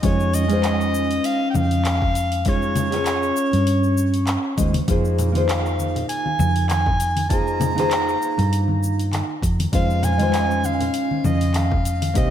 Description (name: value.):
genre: sunset chillout.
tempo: 99 BPM.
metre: 4/4.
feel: swing 55% on 16ths.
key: unclear.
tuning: A4 = 437 Hz.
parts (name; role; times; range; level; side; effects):
breathy soprano saxophone; melody; 0.0-12.3 s; Db5 to Bb5; -25 LUFS; equal; tape echo.
nylon-string guitar; accompaniment; 0.0-12.3 s; Ab3 to Db5; -23 LUFS; moving between left 3 dB and right 4 dB; auto-pan, tape echo.
hollow-body short-scale fingered electric bass; bass; 0.0-12.3 s; C2 to G2; -22 LUFS; equal; none.
deep house drum kit; drums; 0.0-12.3 s; congas, handclaps, hi-hat, shaker; -28 LUFS; left 2 dB; none.
electronic kick drum; drums; 0.0-12.3 s; none; -22 LUFS; equal; none.
congas; percussion; 5.2-12.1 s; none; -30 LUFS; left 3 dB; none.
room: wet lush hall reverb, RT60 1.5 s.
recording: dreamy mix soaked in reverb.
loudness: -18 LUFS.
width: side -10 dB against mid.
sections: 0.0-12.3 A section.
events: none.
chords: 0.0 Dbmaj9/F; 4.9 Ab69/F; 9.4 Dbmaj9/F.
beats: | 0.03 0.64 1.25 1.85 | 2.46 3.06 3.67 4.28 | 4.88 5.49 6.09 6.70 | 7.31 7.91 8.52 9.12 | 9.73 10.34 10.94 11.55 | 12.16.